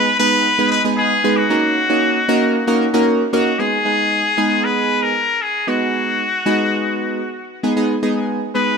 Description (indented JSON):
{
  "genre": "pop",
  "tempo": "115 BPM",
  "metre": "4/4",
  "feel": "straight",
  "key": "G# minor",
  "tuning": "A4 = 441 Hz",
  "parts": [
    { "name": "trumpet with straight mute", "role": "melody", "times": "0.0-8.8 s", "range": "F#4 to B4", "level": "-18 LUFS", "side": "left 2 dB", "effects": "digital delay" },
    { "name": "chorused retro synth keys", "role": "accompaniment", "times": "0.0-8.8 s", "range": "G#3 to B4", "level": "-17 LUFS", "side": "right 1 dB", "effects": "none" }
  ],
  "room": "light reverb, small room ambience",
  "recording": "none",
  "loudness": "-15 LUFS",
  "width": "side -5 dB against mid",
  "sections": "0.0-3.6 A section; 3.6-8.8 B section",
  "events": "none",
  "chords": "0.0 G#m; 1.5 D#m7; 3.6 G#m; 5.7 B6; 7.8 G#m",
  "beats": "0.46 0.98 | 1.50 2.03 2.55 3.07 | 3.59 4.11 4.63 5.16 | 5.68 6.20 6.72 7.24 | 7.76 8.29"
}